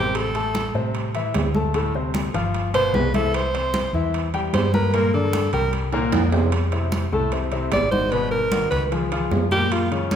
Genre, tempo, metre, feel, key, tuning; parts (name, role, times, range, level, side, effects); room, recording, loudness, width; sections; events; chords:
Afro-Cuban jazz; 151 BPM; 4/4; straight; C major; A4 = 436 Hz
clear alto saxophone; melody; 0.0-10.2 s; Ab3 to D5; -24 LUFS; right 1 dB
warm baby grand piano; accompaniment; 0.0-10.2 s; A2 to C6; -25 LUFS; left 4 dB
hollow-body short-scale fingered electric bass; bass; 0.0-10.2 s; G1 to A2; -24 LUFS; equal
congas; percussion; 0.1-10.2 s; -29 LUFS; equal
timbales; percussion; 0.1-10.2 s; -28 LUFS; right 5 dB
moderate concert hall reverb, RT60 2.1 s; recorded in a church or concert hall; -19 LUFS; side -8 dB against mid
0.0-6.5 A section; 6.5-10.2 A section
alto saxophone solo 0.0-10.2; drum fill 5.9-6.5
0.1 Am; 1.7 Dm7; 2.5 G6; 3.3 C; 4.9 Gm; 5.7 C5; 6.5 Fmaj7; 8.1 Abm9; 8.9 Db6